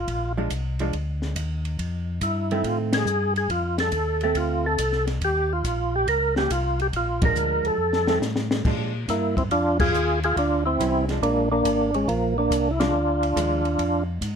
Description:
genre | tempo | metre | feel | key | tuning
soul jazz organ trio | 140 BPM | 4/4 | swing 67% on 8ths | Bb mixolydian | A4 = 438 Hz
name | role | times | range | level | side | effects
percussive tonewheel organ | melody | 0.0-14.0 s | F3 to Bb4 | -23 LUFS | right 1 dB | slow rotary speaker, overdrive, chorus vibrato
mellow tonewheel organ | bass | 0.0-14.4 s | Ab1 to Bb2 | -27 LUFS | left 1 dB | overdrive, chorus vibrato, slow rotary speaker
compact cocktail drum kit | drums | 0.1-14.3 s | crash cymbal, hi-hat, kick drum, ride cymbal, snare drum | -29 LUFS | left 1 dB | none
vintage hollow-body jazz guitar | accompaniment | 0.4-13.6 s | Eb3 to G4 | -28 LUFS | right 4 dB | none
room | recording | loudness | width
light reverb | close, detailed microphones | -21 LUFS | side -7 dB against mid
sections
0.0-8.6 A section; 8.6-14.4 A section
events
band accent 2.9, 7.1, 9.7, 12.7; drum fill 7.8-8.6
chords
0.0 Bb7; 1.8 F7; 5.2 Eb7; 6.9 Bb7; 7.8 F7; 8.6 Bb7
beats
| 0.07 0.50 0.93 1.36 | 1.79 2.21 2.64 3.07 | 3.50 3.93 4.36 4.79 | 5.21 5.64 6.07 6.50 | 6.93 7.36 7.79 8.21 | 8.64 9.07 9.50 9.93 | 10.36 10.78 11.21 11.64 | 12.07 12.50 12.92 13.35 | 13.78 14.21

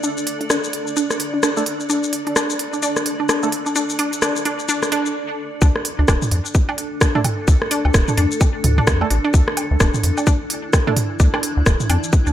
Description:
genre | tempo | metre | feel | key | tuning
minimal techno | 129 BPM | 4/4 | swing 60% on 16ths | unclear | A4 = 440 Hz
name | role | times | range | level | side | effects
resonant blip pluck | riff | 0.0-12.3 s | D4 | -24 LUFS | equal | chorus, sidechain pumping, dub echo
garage drum kit | drums | 0.0-12.3 s | hi-hat, rim click, shaker | -22 LUFS | equal | none
granular cloud pad | texture | 0.0-12.3 s | D4 to D5 | -27 LUFS | equal | built-in reverb, sidechain pumping
percussive organ stab | stabs | 1.6-3.5, 7.2-10.9 s | A3 to A4 | -28 LUFS | right 4 dB | analog chorus, dub echo
rubbery square bass | bass | 5.6-12.3 s | D1 to F2 | -18 LUFS | equal | sidechain pumping
electronic kick drum | drums | 5.6-12.2 s | none | -16 LUFS | equal | none
electronic woodblock and toms | percussion | 6.1-12.0 s | none | -24 LUFS | right 2 dB | overdrive
room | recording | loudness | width
light reverb, digital ambience | none | -16 LUFS | side -12 dB against mid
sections
0.0-5.6 A section; 5.6-12.3 B section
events
build-up 0.0-5.6; filter sweep on synth arpeggio sound 0.0-5.6; stop 5.2-5.6; drop 5.6-12.3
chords
0.0 D5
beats
| 0.04 0.50 0.97 1.43 | 1.90 2.36 2.83 3.29 | 3.76 4.22 4.69 5.15 | 5.62 6.08 6.55 7.01 | 7.48 7.94 8.41 8.87 | 9.34 9.80 10.27 10.73 | 11.20 11.66 12.13

